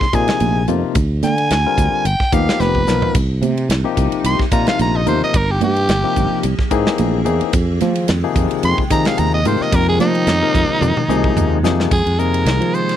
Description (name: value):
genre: electric jazz fusion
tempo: 110 BPM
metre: 4/4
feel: swing 55% on 16ths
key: F minor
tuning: A4 = 440 Hz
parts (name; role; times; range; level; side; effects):
- raspy soprano saxophone; melody; 0.0-13.0 s; Eb4 to C6; -19 LUFS; right 1 dB; slapback echo
- barky tine electric piano; accompaniment; 0.0-13.0 s; C3 to Bb4; -20 LUFS; left 11 dB; medium stereo tremolo
- sustaining fretless electric bass; bass; 0.0-13.0 s; F1 to F3; -18 LUFS; right 1 dB; none
- modern studio drum kit; drums; 0.0-13.0 s; crash cymbal, hi-hat, kick drum, ride cymbal, snare drum, splash cymbal, toms; -20 LUFS; right 1 dB; none
- congas; percussion; 0.4-12.8 s; none; -25 LUFS; right 14 dB; none
- icy glass pad; sustained chords; 3.6-13.0 s; C3 to G5; -27 LUFS; right 3 dB; chorus, built-in reverb
room: little or no reverb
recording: dry, close 1970s-style studio recording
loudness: -14 LUFS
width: side -10 dB against mid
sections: 0.0-11.9 A section; 11.9-13.0 B section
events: soprano saxophone solo 0.0-11.9; drum fill 2.6-3.1, 10.8-11.9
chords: 0.0 Db6 (rootless); 1.0 Dm7b5; 2.1 G7alt; 3.1 Cm7; 5.3 Eb69/G; 6.4 C7alt; 7.5 Fm9; 11.9 Fm7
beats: 0.41 | 0.96 1.50 2.05 2.60 | 3.15 3.70 4.25 4.79 | 5.34 5.89 6.44 6.99 | 7.53 8.08 8.63 9.18 | 9.72 10.27 10.82 11.37 | 11.91 12.46